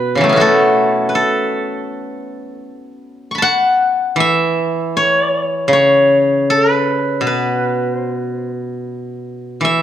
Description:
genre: chinese traditional, Chinese solo plucked strings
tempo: 73-82 BPM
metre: 4/4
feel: rubato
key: unclear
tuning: A4 = 440 Hz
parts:
  - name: steel-string zither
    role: solo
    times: 0.0-9.8 s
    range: B2 to C#6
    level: -14 LUFS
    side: equal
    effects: none
room: light reverb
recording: dark, warm production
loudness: -13 LUFS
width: side -10 dB against mid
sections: 0.0-9.8 A section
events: none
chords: none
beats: | 0.42 1.17 1.92 2.67 | 3.42 4.16 4.92 5.69 | 6.44 7.21 8.02 8.84 | 9.64

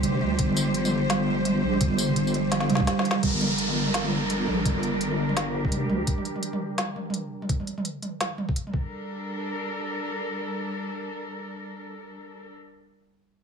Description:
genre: half-time drum and bass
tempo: 169 BPM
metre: 4/4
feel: swing 60% on 16ths, half-time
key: G minor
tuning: A4 = 440 Hz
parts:
  - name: warm studio cello section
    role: sustained chords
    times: 0.0-12.5 s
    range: G3 to C5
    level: -31 LUFS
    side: left 1 dB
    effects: vintage 12-bit sampler grit, sidechain pumping, low-pass filter
  - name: buzzing kalimba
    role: arpeggios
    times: 0.0-3.0 s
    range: D3 to G4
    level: -30 LUFS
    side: right 6 dB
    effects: tape echo
  - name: deep soft wobble bass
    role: bass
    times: 0.0-6.1 s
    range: F1 to D2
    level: -28 LUFS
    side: left 1 dB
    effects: chorus
  - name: organic electronic drum kit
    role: drums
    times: 0.0-8.7 s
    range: hi-hat, snare drum, tambourine, toms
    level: -28 LUFS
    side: equal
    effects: overdrive
  - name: electronic kick drum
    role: drums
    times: 0.4-8.8 s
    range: none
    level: -26 LUFS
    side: equal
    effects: none
  - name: downlifter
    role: sound effects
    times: 3.2-6.1 s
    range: none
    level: -31 LUFS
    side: equal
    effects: none
room: light reverb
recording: none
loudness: -24 LUFS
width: side -6 dB against mid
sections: 0.0-3.2 A section; 3.2-8.9 B section; 8.9-11.8 C section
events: drop 0.0-3.2; drum fill 2.5-3.2; filter sweep on cello section 3.2-7.5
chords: 0.0 G5; 3.2 Gmadd9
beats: 0.04 | 0.39 0.75 1.10 1.46 | 1.81 2.17 2.52 2.88 | 3.23 3.59 3.94 4.30 | 4.65 5.01 5.36 5.72 | 6.07 6.43 6.78 7.14 | 7.49 7.85 8.20 8.56 | 8.91 9.27 9.62 9.98 | 10.33 10.69 11.04 11.40

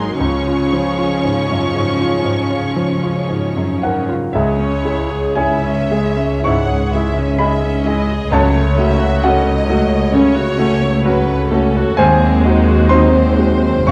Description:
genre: classical, romantic movement for piano and orchestra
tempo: 53-68 BPM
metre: 4/4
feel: rubato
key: Db major, C# minor from 4.3 s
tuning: A4 = 442 Hz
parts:
  - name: clear grand piano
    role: melody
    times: 0.0-13.9 s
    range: Db2 to C#6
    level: -19 LUFS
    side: equal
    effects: none
  - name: dark studio violin section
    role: melody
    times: 0.0-13.9 s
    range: C5 to Db6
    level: -31 LUFS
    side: equal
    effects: none
  - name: warm studio violin section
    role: second line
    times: 0.0-13.9 s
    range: Ab4 to F#5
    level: -26 LUFS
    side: equal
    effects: none
  - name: rich studio viola section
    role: accompaniment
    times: 0.0-13.9 s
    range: F3 to G#4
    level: -24 LUFS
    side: equal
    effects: none
  - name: warm French horn section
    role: sustained chords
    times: 0.0-13.9 s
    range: F3 to Gb4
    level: -25 LUFS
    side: equal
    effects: none
  - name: rich studio cello section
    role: bass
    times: 0.0-13.9 s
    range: C#2 to Db3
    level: -24 LUFS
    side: equal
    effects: none
  - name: warm studio double bass section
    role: bass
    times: 0.0-13.9 s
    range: F1 to Eb2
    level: -22 LUFS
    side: equal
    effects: none
room: moderate recital hall reverb, RT60 1.4 s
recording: none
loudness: -15 LUFS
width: mono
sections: 0.0-4.3 A section; 4.3-13.9 B section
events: none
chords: 0.2 Db; 4.3 C#m; 8.3 F#m/C#; 12.0 Ab7/Eb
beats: | 0.19 1.23 2.24 3.28 | 4.33 5.35 6.44 7.38 | 8.30 9.22 10.12 11.02 | 11.96 12.88 13.85

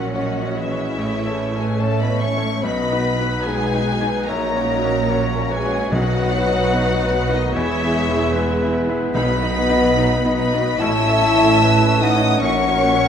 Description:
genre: cinematic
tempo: 74 BPM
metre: 4/4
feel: rubato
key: B major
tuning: A4 = 440 Hz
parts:
  - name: rich symphonic violin section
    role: melody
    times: 0.0-13.1 s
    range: D#5 to E6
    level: -24 LUFS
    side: left 2 dB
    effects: none
  - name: mellow clarinet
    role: second line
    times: 0.0-13.1 s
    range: A#4 to E5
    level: -28 LUFS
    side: equal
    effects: none
  - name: mellow hollow concert flute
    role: second line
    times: 0.0-13.1 s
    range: F#4 to A5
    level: -25 LUFS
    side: left 2 dB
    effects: none
  - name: warm symphonic violin section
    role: second line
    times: 0.0-13.1 s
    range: D#4 to E5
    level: -28 LUFS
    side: left 1 dB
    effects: none
  - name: bright baby grand piano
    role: accompaniment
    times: 0.0-13.1 s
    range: A1 to E5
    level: -25 LUFS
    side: left 2 dB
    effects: none
  - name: rich symphonic viola section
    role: accompaniment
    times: 0.0-13.1 s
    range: F#3 to A#4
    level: -28 LUFS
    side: right 1 dB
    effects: none
  - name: mellow French horn section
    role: sustained chords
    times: 0.0-13.1 s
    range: D#3 to E4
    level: -23 LUFS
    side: left 2 dB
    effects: none
  - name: warm studio cello section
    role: bass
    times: 0.0-13.1 s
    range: E2 to B2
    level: -26 LUFS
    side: right 3 dB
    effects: none
  - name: warm symphonic double bass section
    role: bass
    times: 0.0-13.1 s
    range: E1 to B1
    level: -26 LUFS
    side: right 4 dB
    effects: none
  - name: timpani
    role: percussion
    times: 5.9-10.3 s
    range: B2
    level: -28 LUFS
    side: left 1 dB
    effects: none
room: wet scoring stage reverb, RT60 1.7 s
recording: none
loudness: -16 LUFS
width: side -8 dB against mid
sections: 0.0-13.1 A section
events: none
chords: 0.0 F#/A#; 1.0 A; 2.6 B; 4.3 F#/A#; 5.9 B; 7.5 E; 9.1 B; 10.8 A; 12.4 F#/A#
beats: 0.15 0.99 1.82 | 2.65 3.47 4.29 5.11 | 5.92 6.74 7.55 8.34 | 9.15 9.96 10.81 11.62 | 12.43

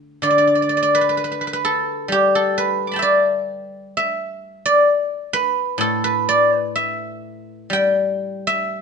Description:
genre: chinese traditional, Chinese solo plucked strings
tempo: 64 BPM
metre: 2/4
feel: rubato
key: D zhi mode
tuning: A4 = 440 Hz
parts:
  - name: guzheng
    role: solo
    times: 0.0-8.8 s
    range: A2 to D6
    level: -17 LUFS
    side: equal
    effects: none
room: moderate stone room reverb, RT60 1.1 s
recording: band playing live in one room, nothing above 10.8 kHz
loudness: -16 LUFS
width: side -5 dB against mid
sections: 0.2-8.8 A section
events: none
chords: none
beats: | 0.23 1.17 | 2.10 3.02 | 3.95 4.87 | 5.80 6.75 | 7.72 8.70

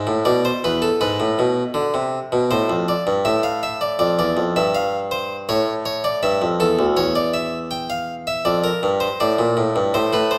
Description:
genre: classical, baroque-style two-part invention for harpsichord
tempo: 80 BPM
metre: 4/4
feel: straight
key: D minor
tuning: A4 = 440 Hz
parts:
  - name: harpsichord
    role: solo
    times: 0.0-10.4 s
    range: D2 to G5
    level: -20 LUFS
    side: equal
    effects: none
room: wet recital hall reverb, RT60 1.4 s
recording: none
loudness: -20 LUFS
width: mono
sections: 0.0-4.0 A section; 4.0-10.4 B section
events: none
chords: 0.0 E5; 1.0 G#dim (rootless); 2.5 Am; 4.0 Dm; 5.5 A; 7.0 Em7; 8.5 Dm/F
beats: 0.25 | 1.00 1.75 2.50 3.25 | 4.00 4.75 5.49 6.24 | 6.98 7.72 8.47 9.21 | 9.96

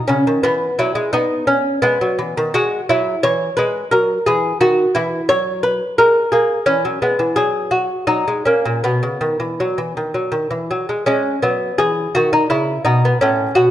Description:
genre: classical, baroque-style dance for lute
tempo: 79-89 BPM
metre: 3/4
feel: rubato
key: B major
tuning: A4 = 440 Hz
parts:
  - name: lute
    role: solo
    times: 0.0-13.7 s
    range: A2 to C#5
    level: -15 LUFS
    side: equal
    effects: none
room: moderate recital hall reverb, RT60 1.5 s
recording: dark, warm production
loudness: -15 LUFS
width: side -12 dB against mid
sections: 0.0-11.1 A section; 11.1-13.7 A section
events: none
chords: 0.4 E; 3.9 F#7; 4.6 C#m11/D#; 6.0 G#sus2; 6.7 E; 7.4 N.C.; 8.1 F#; 8.8 B; 11.1 E; 12.5 Badd9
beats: | 0.44 1.13 1.83 | 2.54 3.24 3.93 | 4.62 5.29 5.98 | 6.67 7.38 8.10 | 8.85 9.60 10.35 | 11.09 11.83 12.54 | 13.23

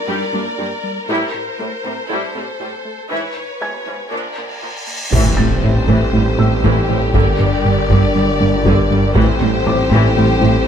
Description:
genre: cinematic, hybrid orchestral and electronic film score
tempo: 119 BPM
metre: 4/4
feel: straight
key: A phrygian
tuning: A4 = 439 Hz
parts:
  - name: rich symphonic violin section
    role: second line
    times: 0.0-10.7 s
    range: G4 to D5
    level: -25 LUFS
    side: left 3 dB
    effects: none
  - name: felt-muted upright piano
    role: texture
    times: 0.0-10.7 s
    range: G#5 to A6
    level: -30 LUFS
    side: left 2 dB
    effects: ping-pong delay
  - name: clear symphonic viola section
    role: accompaniment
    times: 0.1-10.5 s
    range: D3 to G4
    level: -24 LUFS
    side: right 1 dB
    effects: none
  - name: tight sequenced synth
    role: arpeggios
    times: 0.1-10.6 s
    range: E3 to Bb4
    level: -26 LUFS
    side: right 1 dB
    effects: chorus, phaser, ping-pong delay
  - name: round analog bass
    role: riff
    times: 0.1-10.6 s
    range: G2 to Bb3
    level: -20 LUFS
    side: left 3 dB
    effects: none
  - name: rich symphonic cello section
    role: bass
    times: 0.1-10.5 s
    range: G2 to Bb2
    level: -22 LUFS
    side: right 4 dB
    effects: none
  - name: cymbal swell and impact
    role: sound effects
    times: 4.5-7.1 s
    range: none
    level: -22 LUFS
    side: right 1 dB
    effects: none
  - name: warm symphonic violin section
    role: melody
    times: 5.1-10.7 s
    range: C5 to D5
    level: -23 LUFS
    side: left 5 dB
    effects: none
  - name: mellow French horn section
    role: sustained chords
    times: 5.1-10.7 s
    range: C4 to Bb4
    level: -22 LUFS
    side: left 4 dB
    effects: none
  - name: warm trombone section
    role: sustained chords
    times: 5.1-10.7 s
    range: D3 to G3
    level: -24 LUFS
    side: right 4 dB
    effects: none
  - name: phased detuned saw bass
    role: bass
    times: 5.1-10.7 s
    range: G1 to A1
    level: -21 LUFS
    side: equal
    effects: phaser
  - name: warm symphonic double bass section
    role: bass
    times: 5.1-10.5 s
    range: G1 to A1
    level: -21 LUFS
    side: right 4 dB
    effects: none
  - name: taiko ensemble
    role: drums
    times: 5.1-10.4 s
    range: none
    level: -21 LUFS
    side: equal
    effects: none
room: moderate recital hall reverb, RT60 1.5 s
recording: close, detailed microphones, high-pass filter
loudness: -14 LUFS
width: side -8 dB against mid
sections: 0.0-5.1 A section; 5.1-10.7 B section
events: build-up 0.0-5.1; filter sweep 0.0-5.1; cymbal swell 4.5-5.1; impact 5.1-7.1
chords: 0.0 Gm; 1.1 Am7; 3.1 E6/G#; 4.1 Bb; 5.1 Am7; 7.1 Gm; 9.2 Am7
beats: 0.09 0.59 | 1.09 1.60 2.10 2.61 | 3.11 3.62 4.12 4.62 | 5.13 5.63 6.14 6.64 | 7.14 7.65 8.15 8.66 | 9.16 9.66 10.17 10.67

